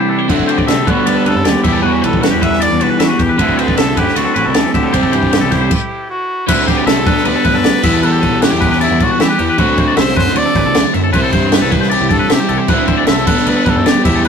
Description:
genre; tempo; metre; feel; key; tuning
math rock and midwest emo; 155 BPM; 4/4; straight; unclear; A4 = 440 Hz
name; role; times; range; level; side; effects
clear trumpet; melody; 0.0-14.3 s; E4 to E5; -20 LUFS; left 1 dB; none
twangy electric guitar; accompaniment; 0.0-7.3 s; E2 to F#4; -21 LUFS; right 2 dB; none
twangy electric guitar; arpeggios; 0.0-14.3 s; F#4 to E5; -18 LUFS; left 5 dB; tape echo
crunchy overdriven guitar; riff; 0.0-14.3 s; C3 to F#4; -16 LUFS; right 1 dB; none
fuzz picked electric bass; bass; 0.3-14.3 s; A1 to E3; -20 LUFS; equal; overdrive
compact cocktail drum kit; drums; 0.3-14.3 s; crash cymbal, kick drum, ride cymbal, snare drum; -16 LUFS; right 1 dB; none
room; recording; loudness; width
wet booth ambience, RT60 0.2 s; rough rehearsal-room recording; -11 LUFS; side -6 dB against mid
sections
0.0-6.5 A section; 6.5-14.3 B section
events
stop 5.7-6.5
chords
0.3 D9; 0.9 Gmaj9/D; 1.6 Em9; 3.4 D9; 4.9 C6; 6.5 D9; 7.1 Gadd9/D; 7.8 Em7; 9.6 D9; 11.1 C69; 12.7 D9; 13.3 Gadd9/D

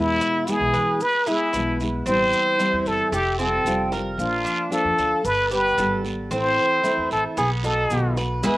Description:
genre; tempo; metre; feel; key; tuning
latin, Cuban son and guajira; 113 BPM; 4/4; straight; A minor; A4 = 436 Hz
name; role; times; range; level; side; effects
trumpet with plunger mute; melody; 0.0-8.6 s; E4 to C5; -21 LUFS; equal; cassette tape, plate reverb
nylon-string guitar; accompaniment; 0.0-8.6 s; B2 to G4; -27 LUFS; equal; cassette tape, plate reverb
Cuban tres; arpeggios; 0.0-8.6 s; A3 to B4; -30 LUFS; right 2 dB; cassette tape, plate reverb
upright bass; bass; 0.0-8.6 s; F1 to E3; -29 LUFS; equal; none
maracas; percussion; 0.2-8.6 s; none; -40 LUFS; left 3 dB; none
guiro; percussion; 0.5-8.6 s; none; -36 LUFS; right 4 dB; none
room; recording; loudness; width
moderate small room reverb, RT60 0.5 s; home recording on cassette; -19 LUFS; side -18 dB against mid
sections
0.0-8.6 A section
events
none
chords
0.0 E; 2.1 Am7; 3.1 Fadd9; 4.2 Bb; 5.2 Gadd9; 6.3 Am; 7.4 B7

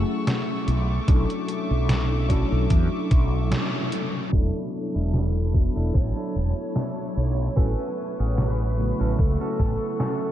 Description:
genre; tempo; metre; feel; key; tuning
vaporwave; 74 BPM; 4/4; swing 54% on 16ths; unclear; A4 = 440 Hz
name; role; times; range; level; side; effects
bell-like tine electric piano; accompaniment; 0.0-10.3 s; C#3 to A4; -29 LUFS; left 1 dB; ensemble chorus, ping-pong delay
bright chamber string section; sustained chords; 0.0-10.3 s; A3 to E6; -36 LUFS; left 1 dB; vintage 12-bit sampler grit
mellow fretless electric bass; bass; 0.0-9.8 s; E1 to E2; -23 LUFS; equal; lush chorus
detuned 8-bit digital drum machine; drums; 0.3-10.2 s; hi-hat, snare drum; -30 LUFS; equal; low-pass filter on hats, low-pass filter on snare, low-pass filter on room
electronic kick drum; drums; 1.1-9.8 s; none; -21 LUFS; equal; none
semi-hollow electric guitar; riff; 4.3-10.3 s; C#4 to A5; -36 LUFS; right 2 dB; analog chorus, low-pass filter, ping-pong delay
dark smooth lead guitar; melody; 5.9-10.3 s; A4 to C#5; -33 LUFS; right 2 dB; overdrive, tape echo
room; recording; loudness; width
moderate huge ambient reverb, RT60 7.5 s; dreamy mix soaked in reverb, cassette tape, low-pass filter; -21 LUFS; side -12 dB against mid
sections
0.0-4.3 A section; 4.3-10.3 B section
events
break 3.5-4.3; band accent 3.5-3.9; filter sweep on clean electric guitar 4.3-10.3; clean electric guitar fill 9.2-10.3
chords
0.0 F#m7; 0.7 Bm11; 4.3 E7sus4; 7.6 A6

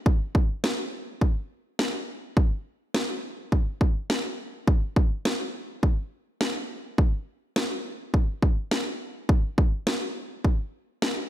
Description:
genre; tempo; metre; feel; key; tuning
pop; 104 BPM; 4/4; straight; none; none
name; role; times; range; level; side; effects
house drum kit; drums; 0.1-11.2 s; kick drum, snare drum; -24 LUFS; equal; none
room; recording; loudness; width
light reverb; none; -25 LUFS; side -13 dB against mid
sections
0.0-11.3 A section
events
none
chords
none

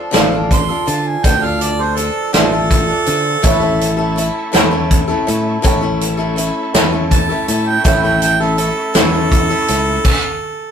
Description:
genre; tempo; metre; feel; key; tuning
folk rock and heartland rock; 54 BPM (dotted quarters); 6/8; straight; unclear; A4 = 438 Hz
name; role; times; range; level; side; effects
clear harmonica; second line; 0.0-10.7 s; A4 to C6; -18 LUFS; right 4 dB; none
picked swing-style acoustic guitar; accompaniment; 0.0-10.1 s; A2 to A4; -20 LUFS; left 2 dB; none
dark upright piano; accompaniment; 0.1-9.8 s; A4 to G5; -22 LUFS; right 1 dB; none
fingered electric bass; bass; 0.1-10.0 s; A1 to D3; -20 LUFS; left 1 dB; none
natural country drum kit; drums; 0.1-10.2 s; crash cymbal, hi-hat, kick drum, snare drum; -16 LUFS; equal; none
bright tonewheel organ; sustained chords; 3.5-10.0 s; A3 to C#5; -30 LUFS; left 1 dB; none
room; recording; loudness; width
moderate studio reverb, RT60 0.5 s; rough rehearsal-room recording, tube saturation; -12 LUFS; side -8 dB against mid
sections
0.0-10.7 A section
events
harmonica solo 0.0-10.7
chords
0.0 Dm; 3.4 A; 10.1 N.C.

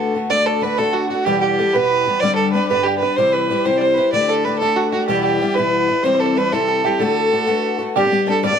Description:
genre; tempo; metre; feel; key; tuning
celtic folk; 126 BPM (dotted quarters); 6/8; straight; D mixolydian; A4 = 441 Hz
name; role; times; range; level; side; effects
warm fiddle; melody; 0.0-8.6 s; F#4 to D5; -17 LUFS; right 2 dB; plate reverb
picked twelve-string acoustic guitar; accompaniment; 0.0-8.6 s; E2 to G4; -20 LUFS; left 6 dB; none
open-back banjo; second line; 0.3-8.6 s; F#4 to D5; -24 LUFS; right 8 dB; none
room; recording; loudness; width
moderate small room reverb, RT60 0.6 s; dark, warm production; -15 LUFS; side -7 dB against mid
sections
0.3-8.0 A section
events
none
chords
0.3 D; 1.3 Em; 2.2 G; 3.2 C; 4.1 Dsus4; 5.1 Em; 6.0 C; 7.0 D6; 8.0 G

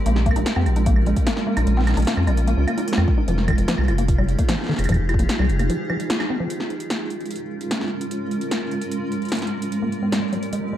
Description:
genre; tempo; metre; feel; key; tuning
IDM; 149 BPM; 4/4; straight; Bb dorian; A4 = 436 Hz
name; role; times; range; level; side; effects
granular cloud pad; sustained chords; 0.0-10.8 s; Ab3 to Bb4; -25 LUFS; right 2 dB; built-in reverb
deep acid bass; arpeggios; 0.1-6.5, 9.8-10.8 s; Eb3 to F4; -26 LUFS; left 2 dB; lush chorus, digital delay
rubbery square bass; bass; 0.1-5.7 s; F1 to F2; -20 LUFS; equal; tube saturation
electro analog drum machine; drums; 0.1-10.6 s; hi-hat, snare drum, woodblock; -27 LUFS; equal; overdrive
electronic kick drum; drums; 0.3-5.2 s; none; -21 LUFS; equal; none
room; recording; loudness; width
moderate digital room reverb, RT60 1.0 s; dark, warm production; -19 LUFS; side -12 dB against mid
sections
0.0-6.5 A section; 6.5-10.8 B section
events
break 5.7-6.5; band accent 6.1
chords
0.1 Bbm7; 3.3 Fm9; 6.5 Bbm7; 9.7 Abmaj9

